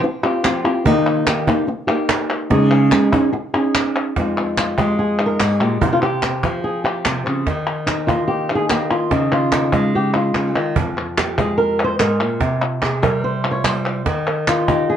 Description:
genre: flamenco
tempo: 145 BPM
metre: 4/4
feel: straight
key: F minor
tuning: A4 = 437 Hz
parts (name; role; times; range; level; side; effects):
- flamenco guitar; melody; 0.0-15.0 s; F2 to Db5; -17 LUFS; equal; plate reverb
- palmas hand claps; percussion; 0.2-14.9 s; none; -23 LUFS; left 2 dB; none
- cajon; percussion; 0.4-14.9 s; none; -23 LUFS; right 4 dB; none
room: moderate studio reverb, RT60 0.5 s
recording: worn, warbling old tape, cassette tape, warbly pitch drift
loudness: -16 LUFS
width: side -9 dB against mid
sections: 0.0-4.2 A section; 4.2-15.0 B section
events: none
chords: 0.0 Csus4; 0.9 Eb; 2.5 Dbsus2; 4.2 Fm7; 5.8 Csus4; 7.5 Eb5; 9.1 Dbsus2; 10.8 Fm; 12.4 Csus4; 14.1 Eb5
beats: 0.03 0.45 | 0.86 1.27 1.69 2.10 | 2.51 2.92 3.34 3.75 | 4.16 4.58 4.99 5.40 | 5.82 6.23 6.64 7.05 | 7.47 7.88 8.29 8.71 | 9.12 9.53 9.94 10.36 | 10.77 11.18 11.59 12.00 | 12.42 12.83 13.24 13.65 | 14.07 14.48 14.89

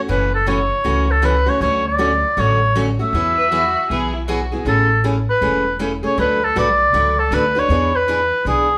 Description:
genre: acoustic string swing (jazz manouche)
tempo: 158 BPM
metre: 4/4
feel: swing 62% on 8ths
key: unclear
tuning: A4 = 441 Hz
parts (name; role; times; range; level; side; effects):
- picked steel-string acoustic guitar; accompaniment; 0.0-8.7 s; C#3 to B4; -25 LUFS; equal; none
- warm oboe; melody; 0.1-8.8 s; G#4 to E5; -19 LUFS; equal; none
- upright bass; bass; 0.1-8.8 s; E1 to E2; -24 LUFS; equal; none
- warm violin; second line; 3.4-4.6 s; E4 to B4; -29 LUFS; equal; none
room: moderate large studio reverb, RT60 0.9 s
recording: band playing live in one room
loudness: -17 LUFS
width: mono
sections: 0.0-8.8 A section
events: none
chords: 0.1 F#m7; 1.6 Dmaj7; 3.1 Eadd9; 4.7 Amaj7; 6.2 D6; 7.7 E7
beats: | 0.09 0.47 0.85 1.23 | 1.61 1.99 2.37 2.75 | 3.14 3.52 3.90 4.28 | 4.66 5.04 5.42 5.80 | 6.18 6.56 6.94 7.32 | 7.70 8.07 8.45

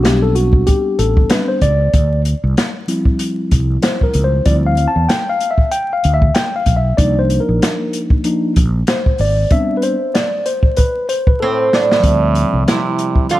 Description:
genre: hip hop, jazz-hop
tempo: 95 BPM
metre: 4/4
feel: swing 58% on 16ths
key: D minor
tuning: A4 = 440 Hz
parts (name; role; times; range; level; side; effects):
- mellow tine electric piano; accompaniment; 0.0-13.4 s; F3 to A5; -17 LUFS; left 1 dB; none
- mellow fretless electric bass; bass; 0.0-12.6 s; G#1 to E2; -15 LUFS; equal; none
- open jazz drum kit; drums; 0.0-13.4 s; hi-hat, kick drum, snare drum; -15 LUFS; equal; none
- oud; melody; 11.4-13.4 s; C4 to F4; -16 LUFS; right 3 dB; none
- trombone with metal mute; second line; 11.4-13.4 s; A2 to D3; -21 LUFS; right 5 dB; none
room: light reverb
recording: vinyl crackle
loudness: -12 LUFS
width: side -15 dB against mid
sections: 0.0-12.0 A section; 12.0-13.4 B section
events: tine electric piano solo 0.0-12.0; drum fill 11.4-12.0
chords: 0.0 Am11; 1.9 Dm11; 7.0 Cm11; 9.5 Am11; 12.0 Dm11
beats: 0.04 0.67 1.30 | 1.93 2.56 3.19 3.83 | 4.46 5.09 5.72 6.35 | 6.98 7.62 8.25 8.88 | 9.51 10.14 10.77 11.40 | 12.04 12.67 13.30

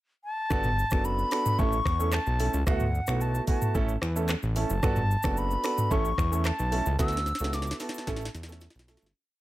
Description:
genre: afrobeats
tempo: 111 BPM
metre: 4/4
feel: straight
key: A mixolydian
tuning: A4 = 440 Hz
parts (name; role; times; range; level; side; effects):
- mellow silver concert flute; melody; 0.2-8.3 s; F#5 to E6; -31 LUFS; left 1 dB; none
- warm grand piano; accompaniment; 0.5-9.0 s; A3 to A4; -32 LUFS; right 4 dB; none
- fat analog bass; bass; 0.5-9.1 s; F#1 to E2; -29 LUFS; equal; none
- afro-pop drum kit; drums; 0.5-9.2 s; finger snaps, handclaps, hi-hat, kick drum, rim click, shaker, snare drum, toms; -30 LUFS; equal; none
room: light reverb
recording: none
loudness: -25 LUFS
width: side -16 dB against mid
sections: 0.0-0.5 pickup bar; 0.5-9.2 chorus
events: fade-out 7.0-9.2; drum fill 7.0-9.2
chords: 0.0 N.C.; 0.5 Gmaj7; 1.6 A; 2.7 D6; 3.7 A; 4.8 Gmaj7; 5.9 A; 7.0 D6; 8.1 A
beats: | 0.51 1.05 1.59 2.13 | 2.67 3.21 3.75 4.29 | 4.83 5.37 5.91 6.45 | 6.99 7.53 8.07 8.61

